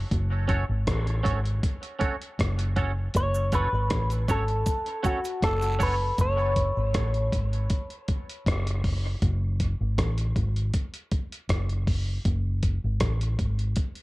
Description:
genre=dub reggae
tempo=79 BPM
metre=4/4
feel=straight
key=F# minor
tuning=A4 = 439 Hz
part: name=vintage muted fingered electric bass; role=bass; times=0.0-13.7 s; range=F#1 to A1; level=-26 LUFS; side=equal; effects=none
part: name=dusty soul sampler-style drum kit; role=drums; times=0.1-14.0 s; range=hi-hat, kick drum, rim click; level=-28 LUFS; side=equal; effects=none
part: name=twangy electric guitar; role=accompaniment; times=0.5-5.9 s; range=C#4 to C#5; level=-34 LUFS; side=right 4 dB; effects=ensemble chorus, high-pass filter, dub echo
part: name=electric guitar with an envelope filter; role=melody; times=3.2-7.7 s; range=F#4 to C#5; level=-28 LUFS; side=left 1 dB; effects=dub echo
part: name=cabasa and guiro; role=percussion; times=3.2-6.4 s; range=none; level=-46 LUFS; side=right 4 dB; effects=high-pass filter on perc, dub echo
room=light reverb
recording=none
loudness=-24 LUFS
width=side -20 dB against mid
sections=0.0-14.0 A section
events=break 0.0-3.1; part muted 6.2-14.0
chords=0.0 F#m

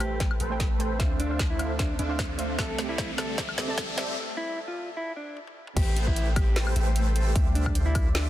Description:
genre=future bass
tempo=151 BPM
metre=4/4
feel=swing 54% on 16ths, half-time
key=A minor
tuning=A4 = 440 Hz
part: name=mellow electric guitar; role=melody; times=0.0-8.3 s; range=D4 to A4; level=-36 LUFS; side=equal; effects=sidechain pumping, dub echo
part: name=soft round pluck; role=accompaniment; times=0.0-4.1 s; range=A3 to A5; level=-38 LUFS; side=right 3 dB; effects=chorus, sidechain pumping, tape echo
part: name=ethereal airy pad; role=sustained chords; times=0.0-8.3 s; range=C3 to G4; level=-40 LUFS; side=right 3 dB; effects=ensemble chorus, built-in reverb, phaser, sidechain pumping
part: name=supersaw chords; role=riff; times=0.0-8.3 s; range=A3 to G5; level=-35 LUFS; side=right 1 dB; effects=wide subtle chorus, sidechain pumping, low-pass filter, tape echo
part: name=long sustained 808-style bass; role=bass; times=0.0-8.3 s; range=A1 to D2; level=-28 LUFS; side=equal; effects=tube saturation, sidechain pumping
part: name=trap drum kit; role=drums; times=0.0-8.2 s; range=crash cymbal, hi-hat, snare drum, toms, woodblock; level=-33 LUFS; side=left 1 dB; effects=high-pass filter on hats, soft clipping on snare, high-pass filter on snare, high-pass filter on perc, high-pass filter on toms, high-pass filter on cymbals
part: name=riser and downlifter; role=sound effects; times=0.0-8.3 s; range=none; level=-39 LUFS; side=left 2 dB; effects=none
part: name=electronic kick drum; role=drums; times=0.2-8.0 s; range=none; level=-27 LUFS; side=equal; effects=none
part: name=Celtic harp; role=arpeggios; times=5.8-8.3 s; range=G4 to E5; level=-38 LUFS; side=left 1 dB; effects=sidechain pumping, tape echo
room=digital ambience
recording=dense, heavily limited modern master, high-pass filter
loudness=-24 LUFS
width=side -13 dB against mid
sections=0.0-5.8 A section; 5.8-8.3 B section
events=build-up 0.0-5.8; drum fill 0.0-4.2, 5.4-5.8; riser 0.0-4.2; filter sweep on supersaw synth 0.0-5.8; filter sweep 0.0-5.8; break 4.2-5.8; drop 5.8-8.3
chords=0.0 Am7; 1.0 Dm9; 2.6 C69; 4.2 N.C.; 5.8 Am7; 7.4 Dm9

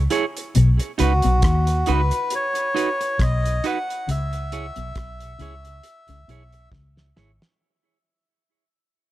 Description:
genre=roots reggae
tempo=68 BPM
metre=4/4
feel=swing 56% on 16ths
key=unclear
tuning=A4 = 440 Hz
part: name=vintage muted fingered electric bass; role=bass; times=0.0-7.4 s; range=G#1 to D#2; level=-21 LUFS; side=equal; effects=none
part: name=clean electric guitar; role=accompaniment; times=0.1-7.3 s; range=D#4 to C#5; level=-27 LUFS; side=right 7 dB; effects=tape echo
part: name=cloth-damped thuddy drum kit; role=drums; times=0.1-7.6 s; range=hi-hat, kick drum, rim click, snare drum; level=-26 LUFS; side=equal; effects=none
part: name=mellow electric guitar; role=riff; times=0.6-7.3 s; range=G#2 to D#3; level=-24 LUFS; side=left 3 dB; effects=none
part: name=melodica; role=melody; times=1.0-6.7 s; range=F#4 to F#5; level=-25 LUFS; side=left 1 dB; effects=tape echo
room=light reverb, small room ambience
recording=dark, warm production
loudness=-19 LUFS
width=side -15 dB against mid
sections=0.0-7.6 A section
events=fade-out 0.0-7.6; drum fill 6.7-7.6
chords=0.0 C#m; 0.5 B; 4.1 C#m

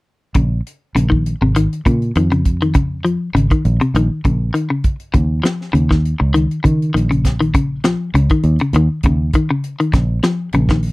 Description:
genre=afrobeat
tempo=100 BPM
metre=4/4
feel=straight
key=Bb minor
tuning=A4 = 440 Hz
part: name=fingered electric bass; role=bass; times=0.3-10.9 s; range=Ab1 to Eb3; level=-16 LUFS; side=equal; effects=none
part: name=tight funk drum kit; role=drums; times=0.3-10.9 s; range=hi-hat, kick drum, snare drum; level=-17 LUFS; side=equal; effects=none
part: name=electric guitar at the edge of break-up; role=arpeggios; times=0.4-10.9 s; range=C3 to F3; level=-17 LUFS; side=left 2 dB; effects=none
room=little or no reverb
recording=dry, close 1970s-style studio recording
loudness=-14 LUFS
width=side -22 dB against mid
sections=0.3-10.9 A section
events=none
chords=0.3 Bbm; 5.2 Eb5

